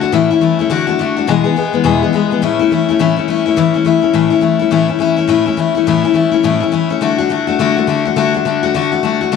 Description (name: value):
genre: rock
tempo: 209 BPM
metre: 4/4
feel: swing 61% on 8ths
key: A major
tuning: A4 = 440 Hz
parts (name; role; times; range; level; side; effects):
- picked steel-string acoustic guitar; solo; 0.0-9.4 s; E2 to G#4; -12 LUFS; left 7 dB; none
room: wet echo chamber reverb, RT60 1.3 s, studio reverb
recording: none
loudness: -12 LUFS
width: side -5 dB against mid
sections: 0.0-2.4 A section; 2.4-9.4 A section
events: none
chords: 0.1 A; 0.7 D; 1.3 E; 2.4 A; 7.0 D